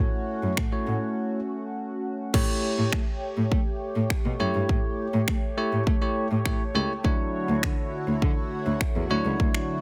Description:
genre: dance-pop.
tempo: 102 BPM.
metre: 4/4.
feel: straight.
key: unclear.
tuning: A4 = 440 Hz.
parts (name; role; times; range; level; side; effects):
bell-like tine electric piano; accompaniment; 0.0-9.8 s; F#3 to C#5; -31 LUFS; equal; sidechain pumping.
chorused pulse-width pad; sustained chords; 0.0-9.8 s; D3 to C#5; -35 LUFS; equal; sidechain pumping.
dark cello; bass; 0.0-9.5 s; C#2 to A3; -30 LUFS; equal; sidechain pumping.
pop drum kit; drums; 0.6-9.7 s; crash cymbal, finger snaps, kick drum; -28 LUFS; equal; soft clipping on snare.
room: digital ambience.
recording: dense, heavily limited modern master.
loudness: -26 LUFS.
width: mono.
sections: 0.0-2.3 A section; 2.3-9.8 B section.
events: break 1.2-2.3.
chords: 0.0 A6; 2.3 A7; 7.0 Dmaj9.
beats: 0.57 1.16 1.75 | 2.34 2.93 3.52 4.11 | 4.69 5.28 5.87 6.46 | 7.05 7.63 8.22 8.81 | 9.40.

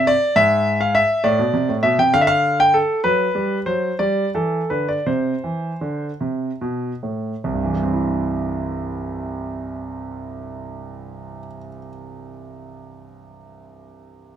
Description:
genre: classical, baroque-style suite movement for grand piano.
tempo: 47-70 BPM (dotted quarters).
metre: 6/8.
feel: rubato.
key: C major.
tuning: A4 = 440 Hz.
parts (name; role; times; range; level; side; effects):
clear concert grand piano; solo; 0.0-14.4 s; C2 to G5; -19 LUFS; equal; none.
room: light reverb.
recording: close, detailed microphones.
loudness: -18 LUFS.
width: side -9 dB against mid.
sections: 0.0-7.4 A section; 7.4-12.3 B section.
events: slowing down 2.1-7.4.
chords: 0.0 N.C.; 1.2 Am; 2.1 N.C.; 3.0 Gmaj7/F#; 4.0 G5; 5.1 N.C.; 7.4 C.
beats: 0.36 | 1.24 2.13 | 3.04 3.99 | 5.06 6.20 | 7.43 8.65 | 9.87 11.09.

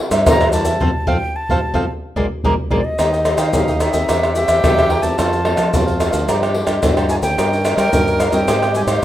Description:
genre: samba and choro.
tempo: 110 BPM.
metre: 4/4.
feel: straight.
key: Eb major.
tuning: A4 = 442 Hz.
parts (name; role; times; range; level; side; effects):
cavaquinho; accompaniment; 0.0-9.0 s; Eb4 to G5; -23 LUFS; right 3 dB; plate reverb.
nylon-string guitar; accompaniment; 0.0-9.0 s; G2 to G4; -25 LUFS; left 4 dB; none.
fingered electric bass with an envelope filter; bass; 0.1-9.0 s; Bb1 to G3; -23 LUFS; equal; none.
maracas, surdo, pandeiro and tamborim; percussion; 0.1-9.0 s; none; -17 LUFS; equal; none.
breathy concert flute; melody; 0.3-9.0 s; D5 to Bb5; -22 LUFS; equal; plate reverb.
breathy tenor saxophone; second line; 3.0-9.0 s; Eb4 to Bb4; -22 LUFS; right 1 dB; plate reverb.
room: moderate studio reverb, RT60 0.6 s.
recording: rough home demo mix.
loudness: -14 LUFS.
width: side -12 dB against mid.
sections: 0.0-3.0 A section; 3.0-9.0 B section.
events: flute solo 0.0-3.0; band accent 0.8-3.0.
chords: 0.0 C7; 0.8 F; 1.9 Bb7; 3.0 Eb; 4.1 C7/E; 5.2 F; 6.3 Gm7; 7.4 Eb7/G; 8.5 Abmaj7.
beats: 0.26 | 0.81 1.35 1.90 2.45 | 3.00 3.54 4.09 4.64 | 5.19 5.74 6.28 6.83 | 7.38 7.93 8.48 9.03.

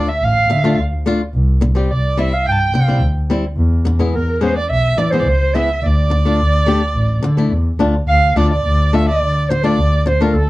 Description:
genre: klezmer.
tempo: 107 BPM.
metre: 4/4.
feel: straight.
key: D minor.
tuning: A4 = 440 Hz.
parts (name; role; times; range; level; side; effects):
dark clarinet; melody; 0.0-10.5 s; A4 to G5; -20 LUFS; right 1 dB; none.
dark violin; second line; 0.0-10.5 s; A4 to A5; -22 LUFS; right 3 dB; none.
flamenco guitar; accompaniment; 0.0-10.4 s; G3 to G4; -18 LUFS; left 2 dB; none.
dark double bass; bass; 0.2-10.5 s; A1 to E3; -16 LUFS; equal; none.
room: moderate small room reverb, RT60 0.6 s.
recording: dark, warm production.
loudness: -13 LUFS.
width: side -18 dB against mid.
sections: 0.0-8.1 A section; 8.1-10.5 B section.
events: none.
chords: 0.0 Dm; 1.3 C; 3.6 E; 5.8 Dm.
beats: 0.22 0.78 | 1.34 1.90 2.46 3.02 | 3.58 4.14 4.70 5.26 | 5.83 6.39 6.95 7.52 | 8.08 8.65 9.21 9.78 | 10.35.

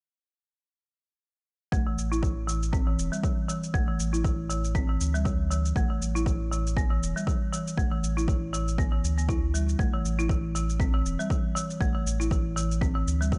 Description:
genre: afro house.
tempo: 119 BPM.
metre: 4/4.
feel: swing 56% on 16ths.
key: A minor pentatonic.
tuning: A4 = 440 Hz.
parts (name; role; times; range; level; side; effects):
folk marimba with medium hard mallets; arpeggios; 1.7-13.4 s; E3 to E4; -33 LUFS; equal; sidechain pumping, low-pass filter, digital delay.
warm sub bass; bass; 1.7-13.4 s; E1 to D2; -31 LUFS; equal; sidechain pumping.
electronic kick drum; drums; 1.7-13.4 s; none; -30 LUFS; equal; overdrive, small room ambience.
shaker; drums; 1.7-13.4 s; none; -40 LUFS; equal; overdrive, small room ambience.
room: little or no reverb.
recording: nothing above 10.6 kHz.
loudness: -27 LUFS.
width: mono.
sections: 1.7-13.4 A section.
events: filter sweep on marimba 1.7-13.4.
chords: 1.7 A5; 5.8 Gsus2 (rootless); 9.8 A5.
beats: | 1.73 2.23 2.74 3.24 | 3.74 4.25 4.75 5.26 | 5.76 6.26 6.77 7.27 | 7.78 8.28 8.79 9.29 | 9.79 10.30 10.80 11.31 | 11.81 12.31 12.82 13.32.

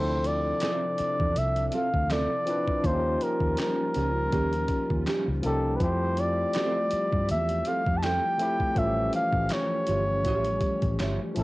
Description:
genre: R&B, neo-soul.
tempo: 81 BPM.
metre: 4/4.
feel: swing 55% on 16ths.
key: unclear.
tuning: A4 = 442 Hz.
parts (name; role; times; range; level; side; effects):
breathy flugelhorn; melody; 0.0-11.4 s; A4 to A5; -28 LUFS; equal; cassette tape.
overdriven tine electric piano; accompaniment; 0.0-11.4 s; E3 to B4; -31 LUFS; left 2 dB; cassette tape.
hollow soft pad; sustained chords; 0.0-11.4 s; C3 to G4; -39 LUFS; equal; none.
vintage muted fingered electric bass; bass; 0.0-11.4 s; G1 to G2; -30 LUFS; equal; none.
dusty soul sampler-style drum kit; drums; 0.2-11.4 s; handclaps, hi-hat, kick drum, snare drum; -32 LUFS; equal; none.
nylon-string guitar; second line; 0.6-11.2 s; C4 to E5; -32 LUFS; right 4 dB; cassette tape, plate reverb.
room: moderate booth ambience, RT60 0.2 s.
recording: home recording on cassette.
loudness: -24 LUFS.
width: side -19 dB against mid.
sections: 0.0-11.4 A section.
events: none.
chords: 0.0 Dm9; 2.8 Eb9; 5.8 Fmaj9; 8.8 A7b13.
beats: 0.62 1.36 2.10 | 2.84 3.58 4.32 5.06 | 5.80 6.54 7.28 8.02 | 8.76 9.51 10.25 10.99.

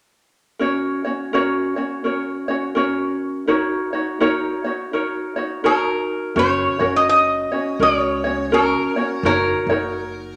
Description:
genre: Hawaiian.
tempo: 83 BPM.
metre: 4/4.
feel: swing 61% on 8ths.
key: F# major.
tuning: A4 = 440 Hz.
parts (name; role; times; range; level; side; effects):
ukulele; accompaniment; 0.6-10.4 s; C#4 to C#5; -22 LUFS; equal; none.
metal-body resonator slide guitar; melody; 5.7-10.4 s; A#4 to D#5; -21 LUFS; equal; none.
upright bass; bass; 6.4-10.3 s; F#1 to C#2; -32 LUFS; equal; none.
room: wet large studio reverb, RT60 1.2 s.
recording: none.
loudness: -20 LUFS.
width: mono.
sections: 0.6-6.4 A section; 6.4-10.4 B section.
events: none.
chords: 0.6 F#; 3.5 D#m7; 6.4 F#; 9.2 D#m7/F#.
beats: | 0.61 1.33 2.05 2.77 | 3.49 4.21 4.92 5.64 | 6.36 7.08 7.80 8.52 | 9.24 9.96.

